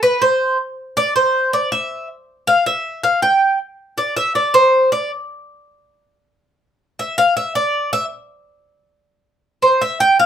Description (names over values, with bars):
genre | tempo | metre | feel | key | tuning
latin | 159 BPM | 4/4 | straight | unclear | A4 = 440 Hz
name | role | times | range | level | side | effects
Cuban tres | solo | 0.0-10.3 s | B4 to G5 | -14 LUFS | equal | none
room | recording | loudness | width
moderate studio ambience, RT60 0.5 s | band playing live in one room | -15 LUFS | side -9 dB against mid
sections
0.0-10.3 A section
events
Cuban tres solo 0.0-10.3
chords
none